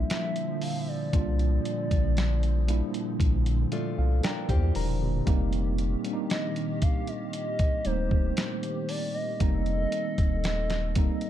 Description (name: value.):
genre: contemporary R&B.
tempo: 58 BPM.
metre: 4/4.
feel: straight.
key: unclear.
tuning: A4 = 440 Hz.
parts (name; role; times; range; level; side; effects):
gliding portamento lead; melody; 0.0-11.3 s; C5 to F5; -34 LUFS; equal; chorus, ping-pong delay.
mellow tine electric piano; accompaniment; 0.0-11.3 s; G3 to Bb5; -32 LUFS; right 2 dB; medium stereo tremolo.
hollow soft pad; sustained chords; 0.0-11.3 s; Bb2 to A4; -35 LUFS; right 1 dB; ensemble chorus.
warm sub bass; bass; 0.0-11.1 s; Eb1 to E2; -27 LUFS; equal; none.
dusty soul sampler-style drum kit; drums; 0.1-11.3 s; hi-hat, kick drum, snare drum; -28 LUFS; equal; none.
nylon-string guitar; arpeggios; 3.7-5.2 s; A3 to Bb4; -36 LUFS; left 6 dB; ping-pong delay.
room: little or no reverb.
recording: dark, warm production.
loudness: -25 LUFS.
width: side -11 dB against mid.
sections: 0.0-11.3 A section.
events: tine electric piano fill 3.2-5.3.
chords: 0.0 C9sus4; 5.3 F9sus4.